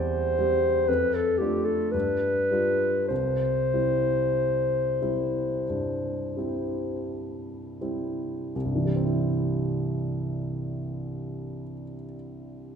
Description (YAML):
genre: classical, romantic duo for clarinet and grand piano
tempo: 39-64 BPM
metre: 4/4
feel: rubato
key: C major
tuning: A4 = 440 Hz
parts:
  - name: dark clarinet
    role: melody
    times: 0.0-7.0 s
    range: G4 to C5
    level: -25 LUFS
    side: left 2 dB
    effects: none
  - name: dark grand piano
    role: accompaniment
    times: 0.0-12.8 s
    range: C2 to G4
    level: -28 LUFS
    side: right 1 dB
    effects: none
room: wet recital hall reverb, RT60 1.6 s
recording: minimal, uncompressed stereo recording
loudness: -24 LUFS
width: side -7 dB against mid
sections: 0.0-8.5 A section; 8.5-12.8 B section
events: slowing down 0.0-8.5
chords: 0.0 C/E; 0.9 Dm/F; 1.9 G7; 3.1 C